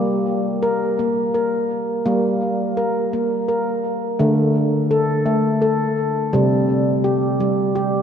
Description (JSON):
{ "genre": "world meditative, meditative tuned percussion", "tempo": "84 BPM", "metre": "3/4", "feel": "straight", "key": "G minor", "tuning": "A4 = 440 Hz", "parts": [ { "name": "handpan", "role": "solo", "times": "0.0-8.0 s", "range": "C3 to Bb4", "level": "-17 LUFS", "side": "equal", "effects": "diffuse ambient delay" } ], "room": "wet cathedral reverb, RT60 5.8 s", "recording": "in a vast, echoing space", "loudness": "-17 LUFS", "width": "side -8 dB against mid", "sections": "0.0-4.2 A section; 4.2-8.0 B section", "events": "none", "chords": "0.0 Gm; 4.2 D5; 6.3 C5", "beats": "0.63 1.35 | 2.06 2.78 3.49 | 4.21 4.92 5.63 | 6.35 7.06 7.77" }